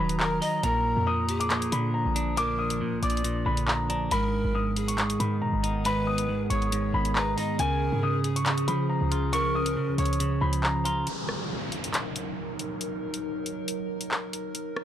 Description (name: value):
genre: hip hop, drill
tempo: 138 BPM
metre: 4/4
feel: half-time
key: Eb minor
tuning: A4 = 438 Hz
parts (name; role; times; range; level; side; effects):
- dark baby grand piano; melody; 0.0-11.0 s; Ab5 to Eb6; -30 LUFS; left 2 dB; low-pass filter, tape echo
- breathy pan flute; second line; 0.0-10.6 s; Ab4 to Eb5; -35 LUFS; left 1 dB; tape echo
- clean electric guitar; accompaniment; 0.0-11.1 s; Ab2 to Eb5; -29 LUFS; right 2 dB; low-pass filter
- warbly tape-like pad; sustained chords; 0.0-14.8 s; Eb3 to Bb5; -35 LUFS; left 1 dB; chorus, built-in reverb, phaser
- short 808-style bass; bass; 0.0-11.0 s; Eb1 to Db3; -31 LUFS; equal; none
- drill drum kit; drums; 0.1-14.8 s; handclaps, hi-hat, rim click; -30 LUFS; left 1 dB; none
- downlifter; sound effects; 11.1-14.5 s; none; -36 LUFS; equal; none
room: little or no reverb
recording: dry, gritty hardware recording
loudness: -25 LUFS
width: side -10 dB against mid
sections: 0.0-11.1 A section; 11.1-14.8 B section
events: break 11.1-14.8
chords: 0.0 Ebm; 0.6 Bb; 4.1 Abm; 7.6 Db; 11.1 Ebm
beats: 0.20 | 0.64 1.07 1.50 1.94 | 2.37 2.81 3.24 3.68 | 4.11 4.55 4.98 5.42 | 5.85 6.29 6.72 7.16 | 7.59 8.03 8.46 8.90 | 9.33 9.77 10.20 10.63 | 11.07 11.50 11.94 12.37 | 12.81 13.24 13.68 14.11 | 14.55